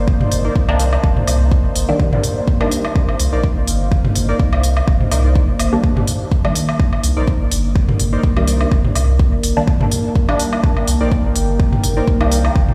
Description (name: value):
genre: dub techno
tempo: 125 BPM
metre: 4/4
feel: swing 55% on 16ths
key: C minor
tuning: A4 = 439 Hz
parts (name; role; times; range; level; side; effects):
- deep dark ambient pad; sustained chords; 0.0-12.7 s; Bb3 to G5; -26 LUFS; equal; chorus, built-in reverb, sidechain pumping
- soft dub sub bass; bass; 0.0-12.6 s; G1 to C2; -20 LUFS; equal; sidechain pumping
- electronic kick drum; drums; 0.1-12.7 s; none; -18 LUFS; equal; none
- electronic toms and woodblock; percussion; 0.2-12.7 s; none; -25 LUFS; equal; overdrive, sidechain pumping on toms, sidechain pumping on perc, dub echo
- electronic hi-hat; drums; 0.3-12.4 s; none; -26 LUFS; equal; none
- warbly lo-fi synth keys; riff; 0.4-12.5 s; Eb4 to D5; -30 LUFS; equal; chorus, sidechain pumping, dub echo
- filtered dub chord stab; stabs; 0.7-2.8, 5.7-12.3 s; Eb3 to D4; -24 LUFS; equal; phaser, sidechain pumping, dub echo
room: little or no reverb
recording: played on a big sound system in a bare room, large studio reverb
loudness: -16 LUFS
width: mono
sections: 0.0-12.7 A section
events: none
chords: 0.0 Cm9